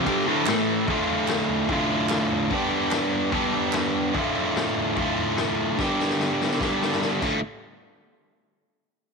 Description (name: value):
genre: garage rock duo or trio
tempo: 147 BPM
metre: 4/4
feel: straight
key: D dorian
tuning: A4 = 436 Hz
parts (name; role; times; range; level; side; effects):
- overdriven electric guitar; riff; 0.0-7.4 s; D2 to G4; -22 LUFS; equal; none
- raw garage drum kit; drums; 0.1-7.3 s; crash cymbal, kick drum, snare drum, toms; -31 LUFS; left 4 dB; none
- group handclap; percussion; 0.5-3.8 s; none; -35 LUFS; right 14 dB; none
room: light reverb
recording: 1960s-style stereo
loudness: -21 LUFS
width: side -4 dB against mid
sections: 0.9-7.4 A section; 7.4-9.1 B section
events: drum fill 5.8-7.4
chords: 0.5 A5; 0.9 Dm; 2.5 G; 4.1 Dm; 5.8 G; 7.2 Dm; 7.4 N.C.